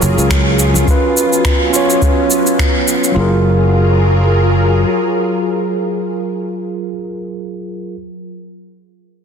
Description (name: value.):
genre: sunset chillout.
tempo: 105 BPM.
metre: 4/4.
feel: swing 56% on 16ths.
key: F# major.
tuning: A4 = 440 Hz.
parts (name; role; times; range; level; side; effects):
mellow tine electric piano; accompaniment; 0.0-8.0 s; F#3 to C#5; -17 LUFS; right 1 dB; auto-pan, tape echo.
soft string machine; sustained chords; 0.0-6.2 s; F#3 to A#4; -18 LUFS; equal; ensemble chorus.
sustaining fretless electric bass; bass; 0.0-4.8 s; F#1 to C#2; -13 LUFS; equal; tube saturation, lush chorus.
electronic shaker and finger snaps; drums; 0.0-3.1 s; none; -19 LUFS; equal; soft clipping on snare.
congas; percussion; 0.0-0.8 s; none; -25 LUFS; right 3 dB; none.
electronic kick drum; drums; 0.3-2.7 s; none; -15 LUFS; equal; none.
room: moderate lush hall reverb, RT60 2.5 s.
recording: dense, heavily limited modern master.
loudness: -12 LUFS.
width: side -6 dB against mid.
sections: 0.0-3.2 A section; 3.2-5.4 B section.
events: none.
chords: 0.0 F#maj9; 0.9 C#7/F#; 3.2 F#maj9.